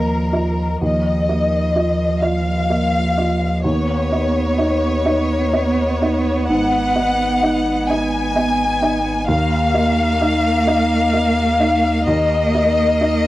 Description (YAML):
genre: neoclassical piano and strings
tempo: 43 BPM (dotted quarters)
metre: 6/8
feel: rubato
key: unclear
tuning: A4 = 440 Hz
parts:
  - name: rich symphonic violin section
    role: melody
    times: 0.0-13.3 s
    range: Bb4 to Ab5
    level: -19 LUFS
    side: left 3 dB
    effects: cassette tape
  - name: rich cello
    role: second line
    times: 0.0-13.3 s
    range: F3 to B3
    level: -22 LUFS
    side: right 2 dB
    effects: cassette tape
  - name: felt-muted upright piano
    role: accompaniment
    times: 0.0-13.3 s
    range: Eb2 to Eb5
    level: -20 LUFS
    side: right 1 dB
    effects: cassette tape
  - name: saturated sub bass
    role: bass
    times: 0.0-13.3 s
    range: Ab1 to Eb2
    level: -23 LUFS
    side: equal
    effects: none
room: light reverb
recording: home recording on cassette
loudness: -15 LUFS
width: side -16 dB against mid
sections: 0.0-13.3 A section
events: none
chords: 0.0 Ebsus2; 3.6 Badd9/D#; 6.5 Abm; 9.3 Ebsus2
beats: | 0.81 2.22 | 3.64 5.04 | 6.49 7.89 | 9.28 10.67 | 12.07